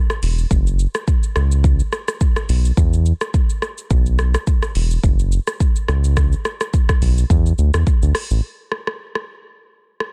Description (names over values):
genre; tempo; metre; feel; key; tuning
afrobeats; 106 BPM; 4/4; swing 55% on 16ths; B minor; A4 = 439 Hz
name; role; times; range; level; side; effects
afro-pop drum kit; drums; 0.1-10.1 s; hi-hat, kick drum, rim click, shaker; -20 LUFS; equal; vintage 12-bit sampler grit, soft clipping on snare
round analog bass; bass; 0.2-8.4 s; E1 to E2; -18 LUFS; equal; none
room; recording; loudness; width
little or no reverb; dense, heavily limited modern master; -18 LUFS; mono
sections
0.0-8.4 A section; 8.4-10.1 B section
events
none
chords
none